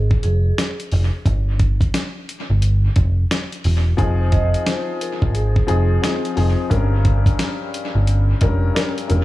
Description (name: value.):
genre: hip hop, boom-bap hip-hop.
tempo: 88 BPM.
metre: 4/4.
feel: swing 62% on 16ths.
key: F minor.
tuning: A4 = 443 Hz.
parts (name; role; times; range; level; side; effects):
vibraphone with soft mallets; melody; 0.0-6.2 s; Ab4 to Eb5; -28 LUFS; right 2 dB; high-pass filter, low-pass filter, dub echo.
deep dub picked electric bass; bass; 0.0-9.2 s; E1 to Ab1; -17 LUFS; equal; none.
dusty soul sampler-style drum kit; drums; 0.1-9.2 s; hi-hat, kick drum, snare drum; -20 LUFS; equal; dub echo.
dark upright piano; accompaniment; 4.0-9.2 s; G2 to Bb4; -23 LUFS; left 4 dB; cassette tape, high-pass filter, low-pass filter, dub echo.
room: little or no reverb.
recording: echo-heavy mix, small room ambience.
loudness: -16 LUFS.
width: side -17 dB against mid.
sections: 0.0-9.2 A section.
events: break 0.0-4.0.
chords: 0.0 Fm; 1.3 N.C.; 4.0 Fm7; 6.7 Gdim.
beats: 0.57 | 1.26 1.94 2.62 3.30 | 3.98 4.67 5.35 6.03 | 6.71 7.39 8.07 8.76.